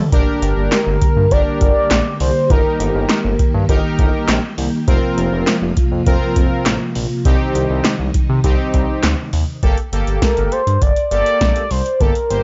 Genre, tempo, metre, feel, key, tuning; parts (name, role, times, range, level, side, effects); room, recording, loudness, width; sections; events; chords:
synth-pop; 101 BPM; 4/4; straight; G minor; A4 = 441 Hz
ensemble organ-string; sustained chords; 0.0-9.6 s; C3 to A4; -25 LUFS; equal; ensemble chorus
analog synth brass; accompaniment; 0.1-12.4 s; Bb3 to C5; -24 LUFS; equal; chorus
smooth synth bass; bass; 0.1-12.4 s; F1 to C3; -22 LUFS; equal
electro analog drum machine; drums; 0.1-12.4 s; handclaps, hi-hat, kick drum, snare drum; -19 LUFS; equal; overdrive
mellow horn-like synth lead; melody; 0.7-4.3, 10.2-12.4 s; Bb4 to D5; -20 LUFS; equal; chorus, phaser
digital ambience; dry, gritty hardware recording, nothing above 7.6 kHz; -16 LUFS; mono
0.1-9.6 A section; 9.6-12.4 B section
0.1 Gm; 2.5 Eb/G; 4.9 Fsus4; 7.3 Cm; 9.6 Gmadd9